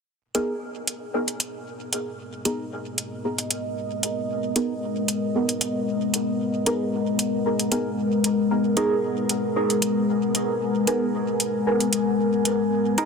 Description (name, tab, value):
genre	dub techno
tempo	114 BPM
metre	4/4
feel	swing 54% on 16ths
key	G# minor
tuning	A4 = 440 Hz
part	deep dark ambient pad	sustained chords	1.8-13.1 s	G#3 to G#5	-24 LUFS	left 2 dB	chorus, built-in reverb
part	deep mellow chord stab	stabs	0.3-13.1 s	B3 to A#4	-27 LUFS	right 2 dB	chorus, phaser, dub echo
part	electronic hi-hat	drums	0.3-13.1 s	none	-24 LUFS	right 1 dB	none
room	moderate huge ambient reverb, RT60 6.3 s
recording	dense, heavily limited modern master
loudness	-22 LUFS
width	side -5 dB against mid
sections	0.1-13.1 A section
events	filter sweep on synth stab 0.1-13.1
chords	0.1 G#madd9